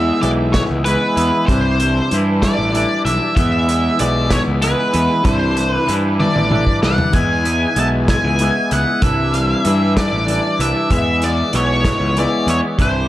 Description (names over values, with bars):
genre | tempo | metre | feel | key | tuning
psychedelic rock | 64 BPM (dotted quarters) | 6/8 | straight | E mixolydian | A4 = 440 Hz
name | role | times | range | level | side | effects
octave-fuzz lead guitar | melody | 0.0-13.1 s | B4 to A5 | -19 LUFS | equal | wah, distortion, tape echo
twangy electric guitar | riff | 0.0-13.1 s | C3 to E4 | -19 LUFS | equal | rotary speaker
fuzz picked electric bass | bass | 0.0-13.1 s | A1 to G2 | -19 LUFS | equal | overdrive
vintage drum kit | drums | 0.2-12.9 s | hi-hat, kick drum, snare drum, toms | -20 LUFS | equal | none
room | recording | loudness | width
light reverb, studio ambience | none | -14 LUFS | side -14 dB against mid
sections
0.0-13.1 A section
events
drum fill 6.2-7.1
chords
0.0 E; 1.5 Cadd9; 3.4 E; 5.3 Cadd9; 7.1 E; 9.0 Cadd9; 10.9 E